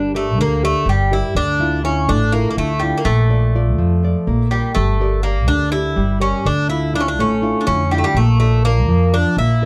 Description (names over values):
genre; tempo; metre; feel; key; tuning
greek folk, Greek bouzouki band; 247 BPM (eighths); 7/8; straight; unclear; A4 = 439 Hz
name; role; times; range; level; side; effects
Greek bouzouki; melody; 0.0-9.7 s; G3 to E4; -22 LUFS; equal; none
nylon-string guitar; accompaniment; 0.0-9.7 s; Bb2 to D5; -23 LUFS; equal; none
upright bass; bass; 0.0-9.7 s; G1 to F2; -20 LUFS; equal; none
room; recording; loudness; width
light reverb; dark, warm production; -17 LUFS; mono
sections
0.0-9.7 A section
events
none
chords
0.0 Gm; 1.4 Dmadd9; 3.1 Bb; 4.8 Gm; 6.5 Dmadd9; 8.2 Bb